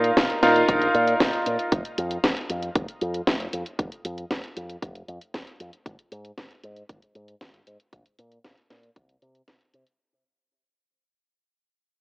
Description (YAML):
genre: italo disco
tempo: 116 BPM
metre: 4/4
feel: straight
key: unclear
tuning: A4 = 440 Hz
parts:
  - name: bright electric grand piano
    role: stabs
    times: 0.0-1.7 s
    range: Eb4 to F5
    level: -21 LUFS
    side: equal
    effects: vintage 12-bit sampler grit, shimmer reverb, analog delay
  - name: fingered electric bass with an envelope filter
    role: bass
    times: 0.0-9.8 s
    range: F1 to C3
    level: -28 LUFS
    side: equal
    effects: analog delay
  - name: house drum kit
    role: drums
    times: 0.0-10.0 s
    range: hi-hat, snare drum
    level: -25 LUFS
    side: equal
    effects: none
  - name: electronic kick drum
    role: drums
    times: 0.2-9.6 s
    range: none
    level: -27 LUFS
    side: equal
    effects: none
room: moderate lush hall reverb, RT60 1.7 s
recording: dry, gritty hardware recording, AM radio sound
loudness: -21 LUFS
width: side -28 dB against mid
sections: 0.0-10.0 A section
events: fade-out 0.0-10.0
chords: 0.0 Bbsus4; 1.7 N.C.